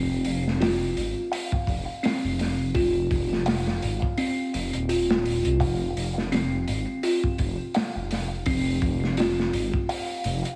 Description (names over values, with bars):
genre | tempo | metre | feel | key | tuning
trip hop | 84 BPM | 4/4 | swing 56% on 16ths | F minor | A4 = 441 Hz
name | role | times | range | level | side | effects
music box | arpeggios | 0.0-10.6 s | C4 to F5 | -29 LUFS | equal | low-pass filter, tape echo
dark detuned saw bass | bass | 0.0-10.4 s | Eb1 to C2 | -30 LUFS | equal | tube saturation
crunchy breakbeat drum kit | drums | 0.2-10.6 s | hi-hat, kick drum, snare drum | -31 LUFS | equal | none
room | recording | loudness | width
moderate lush hall reverb, RT60 2.5 s | dreamy mix soaked in reverb, vinyl crackle, small room ambience | -26 LUFS | mono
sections
0.0-10.6 A section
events
none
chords
0.0 Ab/F (rootless); 5.6 F5